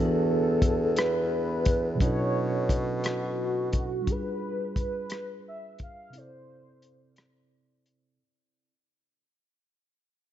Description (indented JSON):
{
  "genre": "slow six-eight R&B",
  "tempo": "58 BPM (dotted quarters)",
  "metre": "6/8",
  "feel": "straight",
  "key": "unclear",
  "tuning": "A4 = 440 Hz",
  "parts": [
    { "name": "warm velvety synth lead", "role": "melody", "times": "0.0-7.5 s", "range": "F#4 to F5", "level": "-31 LUFS", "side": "equal", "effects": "chorus" },
    { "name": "mellow tine electric piano", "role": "accompaniment", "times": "0.0-8.2 s", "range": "B2 to D5", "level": "-31 LUFS", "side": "right 2 dB", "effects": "slow stereo tremolo, tape echo" },
    { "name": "warm bassoon", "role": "bass", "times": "0.0-4.0 s", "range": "E2 to B2", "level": "-30 LUFS", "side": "left 1 dB", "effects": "none" },
    { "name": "warm soul drum kit", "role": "drums", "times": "0.6-8.0 s", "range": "hi-hat, kick drum, rim click", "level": "-28 LUFS", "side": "left 1 dB", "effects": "none" }
  ],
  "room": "light reverb, studio reverb",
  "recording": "echo-heavy mix, nothing above 7.7 kHz",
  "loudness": "-25 LUFS",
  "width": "side -11 dB against mid",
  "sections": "0.0-8.2 A section",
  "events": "fade-out 0.0-8.2; break 6.1-8.2",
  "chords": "0.0 E9sus4; 2.0 Bm11; 4.1 G7b9; 6.1 C6"
}